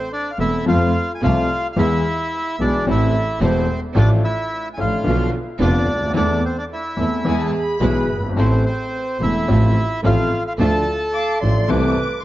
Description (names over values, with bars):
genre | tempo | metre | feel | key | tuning
tango | 108 BPM | 4/4 | rubato | A harmonic minor | A4 = 436 Hz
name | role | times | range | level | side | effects
bandoneon | melody | 0.0-11.4 s | C4 to A5 | -23 LUFS | equal | none
warm concert grand piano | accompaniment | 0.4-11.9 s | E1 to A4 | -21 LUFS | left 2 dB | none
warm symphonic string section | stabs | 0.4-11.9 s | G#3 to F4 | -28 LUFS | right 4 dB | analog delay
clear double bass | bass | 0.4-11.9 s | E1 to F2 | -21 LUFS | right 1 dB | none
hollow concert flute | second line | 7.3-12.2 s | G#4 to F5 | -26 LUFS | right 4 dB | analog delay
rich studio violin section | second line | 7.3-12.2 s | G#5 to D6 | -29 LUFS | left 4 dB | none
room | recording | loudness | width
moderate spring reverb, RT60 2.3 s | cassette tape, nothing above 7.6 kHz | -16 LUFS | side -15 dB against mid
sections
0.0-12.2 A section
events
none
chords
0.0 Am; 0.7 F; 1.8 E; 2.9 Am; 4.0 Dm/A; 5.1 Bdim; 6.2 Am/E; 7.3 E; 8.4 Am; 9.5 F/A; 10.6 Dm; 11.7 Am/C